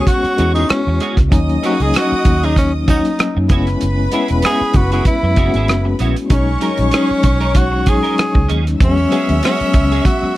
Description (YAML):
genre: lush 1970s-style soul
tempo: 96 BPM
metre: 4/4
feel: swing 54% on 16ths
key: B major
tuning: A4 = 440 Hz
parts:
  - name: breathy tenor saxophone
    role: melody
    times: 0.0-10.4 s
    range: C#4 to G#4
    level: -19 LUFS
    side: equal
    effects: none
  - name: warm studio violin section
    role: second line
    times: 0.0-10.4 s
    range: B4 to E6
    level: -25 LUFS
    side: left 1 dB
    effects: none
  - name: tine electric piano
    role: accompaniment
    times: 0.0-10.4 s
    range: F#3 to F#4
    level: -19 LUFS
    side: left 3 dB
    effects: overdrive, fast tremolo
  - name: electric guitar at the edge of break-up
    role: riff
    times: 0.0-10.3 s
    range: G#3 to A#4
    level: -25 LUFS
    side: right 5 dB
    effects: ensemble chorus
  - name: warm soul drum kit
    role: drums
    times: 0.1-10.2 s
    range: hi-hat, kick drum, rim click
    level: -15 LUFS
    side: right 1 dB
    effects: none
  - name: vintage muted fingered electric bass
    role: bass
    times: 0.2-10.3 s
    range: E1 to F#2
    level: -17 LUFS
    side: equal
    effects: none
room: small room reverb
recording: dry, close 1970s-style studio recording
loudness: -12 LUFS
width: side -16 dB against mid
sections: 0.0-10.4 A section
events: none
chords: 0.0 E69; 1.3 D#m7; 3.5 F#7sus4; 6.3 B69; 8.8 E69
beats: 0.07 0.70 | 1.32 1.94 2.57 3.19 | 3.81 4.44 5.06 5.69 | 6.31 6.93 7.56 8.18 | 8.81 9.43 10.05